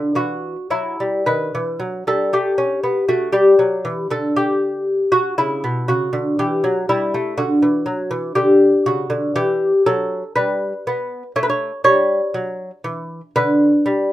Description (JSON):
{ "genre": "classical, baroque-style dance for lute", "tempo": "60 BPM", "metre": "4/4", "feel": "rubato", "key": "unclear", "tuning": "A4 = 440 Hz", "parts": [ { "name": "lute", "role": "solo", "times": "0.0-14.1 s", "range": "B2 to C#5", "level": "-16 LUFS", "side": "equal", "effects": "none" } ], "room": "light reverb", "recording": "minimal, uncompressed stereo recording", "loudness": "-16 LUFS", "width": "side -14 dB against mid", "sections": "0.0-14.1 A section", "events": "none", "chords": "0.0 Bsus4 (rootless); 1.3 B7/D#; 3.3 Em; 5.4 A7 (rootless); 7.4 D; 9.4 Em; 11.4 A7; 13.3 N.C." }